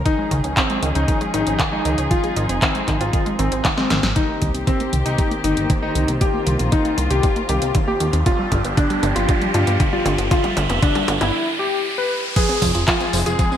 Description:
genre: italo disco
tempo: 117 BPM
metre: 4/4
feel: straight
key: unclear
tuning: A4 = 440 Hz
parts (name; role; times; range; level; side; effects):
- muted chamber string section; sustained chords; 0.0-13.6 s; Eb3 to E5; -26 LUFS; left 1 dB; none
- chorused synth bass; bass; 0.0-13.4 s; F1 to G2; -22 LUFS; equal; none
- warm electric grand piano; melody; 0.1-13.5 s; C4 to B4; -23 LUFS; left 2 dB; analog chorus, ping-pong delay
- analog pluck; arpeggios; 0.1-13.6 s; D3 to F4; -26 LUFS; right 2 dB; chorus, ping-pong delay
- electronic kick drum; drums; 0.1-13.5 s; none; -21 LUFS; equal; none
- house drum kit; drums; 0.1-13.6 s; crash cymbal, handclaps, hi-hat, snare drum, tambourine, toms; -24 LUFS; left 1 dB; high-pass filter on hats, high-pass filter on snare, high-pass filter on toms, high-pass filter on perc, high-pass filter on cymbals, gated reverb
- riser and downlifter; sound effects; 5.4-13.6 s; none; -27 LUFS; right 2 dB; none
room: moderate plate reverb, RT60 1.9 s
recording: bright 1980s-style digital production, vinyl crackle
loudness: -17 LUFS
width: side -10 dB against mid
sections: 0.0-4.2 A section; 4.2-12.4 B section; 12.4-13.6 C section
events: drum fill 3.6-4.2, 4.2-11.3; filter sweep on synth arpeggio sound 4.2-12.4; riser 5.4-12.4; break 11.3-12.4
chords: 0.1 Dbadd9; 2.1 Ab6; 4.2 Cm7; 8.3 G7; 12.4 Fm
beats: | 0.06 0.57 1.08 1.59 | 2.11 2.62 3.13 3.65 | 4.16 4.67 5.18 5.70 | 6.21 6.72 7.24 7.75 | 8.26 8.77 9.29 9.80 | 10.31 10.82 11.34 11.85 | 12.36 12.88 13.39

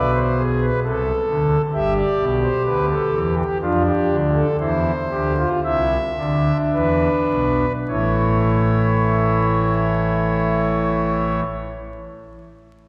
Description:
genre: classical, baroque-style 3-part fugue for pipe organ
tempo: 50-66 BPM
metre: 3/4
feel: straight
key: unclear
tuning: A4 = 443 Hz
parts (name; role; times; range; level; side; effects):
- pipe organ, foundations; solo; 0.0-11.4 s; G1 to E5; -20 LUFS; equal; none
room: wet church reverb, RT60 2.9 s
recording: recorded in a church or concert hall, vinyl crackle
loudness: -19 LUFS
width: mono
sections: 0.0-7.9 A section; 7.9-11.4 B section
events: slowing down 0.4-7.9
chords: 0.0 E7 (rootless); 0.8 Am/C; 1.7 Em/G; 3.6 Dm/F; 4.6 Cadd9; 6.7 E5; 7.9 A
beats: 0.82 | 1.74 2.66 3.62 | 4.60 5.64 6.72 | 7.89 9.08 10.26

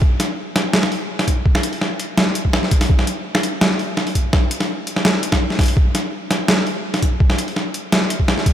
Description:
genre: drum and bass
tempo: 167 BPM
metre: 4/4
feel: half-time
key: none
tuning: none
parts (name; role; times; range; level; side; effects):
- electronic kick drum; drums; 0.0-8.5 s; none; -16 LUFS; equal; none
- boom bap sampler-style drum kit; drums; 0.2-8.5 s; hi-hat, snare drum; -18 LUFS; equal; none
room: moderate huge ambient reverb, RT60 4.6 s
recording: dreamy mix soaked in reverb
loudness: -16 LUFS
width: side -10 dB against mid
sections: 0.0-8.5 A section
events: none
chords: none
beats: | 0.02 0.38 0.74 1.10 | 1.46 1.81 2.17 2.53 | 2.89 3.25 3.61 3.97 | 4.33 4.69 5.05 5.41 | 5.77 6.13 6.49 6.84 | 7.20 7.56 7.92 8.28

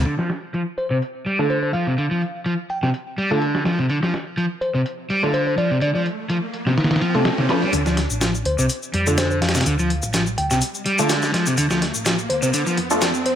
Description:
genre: breakbeat, breaks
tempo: 125 BPM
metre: 4/4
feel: swing 54% on 16ths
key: D minor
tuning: A4 = 438 Hz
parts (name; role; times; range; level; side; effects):
- hollow-body short-scale fingered electric bass; bass; 0.0, 7.7-13.4 s; A1 to F2; -25 LUFS; equal; low-pass filter
- crunchy overdriven guitar; riff; 0.1-13.1 s; C3 to G3; -21 LUFS; equal; tube saturation, low-pass filter, tape echo
- dusty soul sampler-style drum kit; drums; 0.1-13.4 s; hi-hat, kick drum, snare drum; -24 LUFS; equal; high-pass filter on snare, low-pass filter on snare, small room ambience, high-pass filter on hats, low-pass filter on hats, high-pass filter on kick, low-pass filter on kick
- bell-like FM electric piano; melody; 0.8-13.3 s; C5 to G5; -25 LUFS; left 1 dB; chorus, small speaker sound, cassette tape, tape echo
- orchestra-hit-like synth stab; stabs; 1.4-13.0 s; A3 to B4; -24 LUFS; right 1 dB; built-in reverb, tape echo
- riser; sound effects; 5.3-13.4 s; none; -29 LUFS; left 1 dB; none
- shaker; drums; 7.7-13.2 s; none; -28 LUFS; left 4 dB; low-pass filter on hats, small room ambience, low-pass filter on perc, low-pass filter on snare, low-pass filter on room
room: light reverb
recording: high-pass filter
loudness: -18 LUFS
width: side -10 dB against mid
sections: 0.1-7.7 A section; 7.7-13.4 B section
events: riser 5.3-7.7, 7.7-13.4; build-up 7.7-13.4; filter sweep on synth stab 7.7-13.4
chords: 0.1 Dm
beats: | 0.06 0.54 1.02 1.50 | 1.98 2.46 2.94 3.42 | 3.90 4.38 4.86 5.34 | 5.82 6.30 6.78 7.26 | 7.74 8.22 8.70 9.18 | 9.66 10.14 10.62 11.10 | 11.58 12.06 12.54 13.02

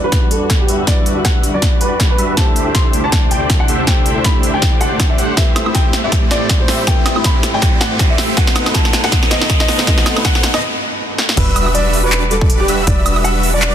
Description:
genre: future bass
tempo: 160 BPM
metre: 4/4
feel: swing 56% on 16ths, half-time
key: E minor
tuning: A4 = 440 Hz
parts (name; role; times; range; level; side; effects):
- dark baby grand piano; melody; 0.0-13.7 s; G4 to C6; -21 LUFS; left 1 dB; sidechain pumping, ping-pong delay
- felt-muted upright piano; accompaniment; 0.0-11.4 s; G3 to B5; -26 LUFS; left 4 dB; sidechain pumping, tape echo
- dark studio string section; sustained chords; 0.0-10.6 s; D2 to F#4; -27 LUFS; equal; none
- dense compressed supersaw; riff; 0.0-13.7 s; G3 to F#5; -20 LUFS; right 1 dB; sidechain pumping, low-pass filter
- riser and sub drop; sound effects; 3.2-12.9 s; none; -25 LUFS; equal; none
- big-room dance drum kit; drums; 0.1-13.7 s; crash cymbal, handclaps, hi-hat, snare drum, woodblock; -18 LUFS; equal; high-pass filter on snare, high-pass filter on hats, high-pass filter on perc, high-pass filter on cymbals, high-pass filter on room
- electronic kick drum; drums; 0.1-13.0 s; none; -14 LUFS; equal; none
- airy dreamy lead; arpeggios; 11.4-13.7 s; D6 to E6; -24 LUFS; equal; chorus, sidechain pumping, tape echo
- warm 808-style bass; bass; 11.4-13.7 s; E1; -18 LUFS; equal; sidechain pumping
room: little or no reverb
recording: dense, heavily limited modern master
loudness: -12 LUFS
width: side -10 dB against mid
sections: 0.0-11.4 A section; 11.4-13.7 B section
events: build-up 0.0-11.4; drum fill 0.0-10.6, 11.2; filter sweep on supersaw synth 0.0-11.4; riser 3.2-10.6; break 10.6-11.4; drop 11.4-13.7; impact 11.4-12.9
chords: 0.0 Em9; 2.4 D9sus4; 5.4 Am7; 8.4 B7b9; 11.4 Em9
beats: 0.12 0.50 | 0.87 1.25 1.62 2.00 | 2.37 2.75 3.12 3.50 | 3.87 4.25 4.62 5.00 | 5.37 5.75 6.12 6.50 | 6.87 7.25 7.62 8.00 | 8.37 8.75 9.12 9.50 | 9.87 10.25 10.62 11.00 | 11.37 11.75 12.12 12.50 | 12.87 13.25 13.62

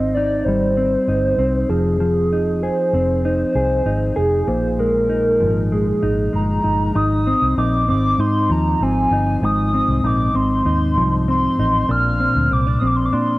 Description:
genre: indie pop, bedroom pop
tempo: 97 BPM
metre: 4/4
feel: straight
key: Ab lydian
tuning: A4 = 440 Hz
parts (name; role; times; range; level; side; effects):
- warbly nostalgic lead; melody; 0.0-13.4 s; Ab4 to F6; -20 LUFS; right 1 dB; analog chorus, cassette tape
- mellow electric guitar; accompaniment; 0.0-13.4 s; Ab2 to Ab4; -20 LUFS; left 1 dB; wide subtle chorus, vibrato effect, cassette tape
- vintage muted fingered electric bass; bass; 0.0-13.4 s; F1 to Bb2; -21 LUFS; equal; none
room: light reverb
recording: home recording on cassette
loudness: -16 LUFS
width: side -19 dB against mid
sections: 0.0-7.0 A section; 7.0-13.4 B section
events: none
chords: 0.0 Abmaj7; 1.7 Fm7; 4.5 Bb7sus4; 7.0 Ab6; 11.9 Bbadd9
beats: 0.15 0.77 1.39 | 2.00 2.62 3.24 3.86 | 4.48 5.10 5.71 6.33 | 6.95 7.57 8.19 8.80 | 9.42 10.04 10.66 11.28 | 11.90 12.51 13.13

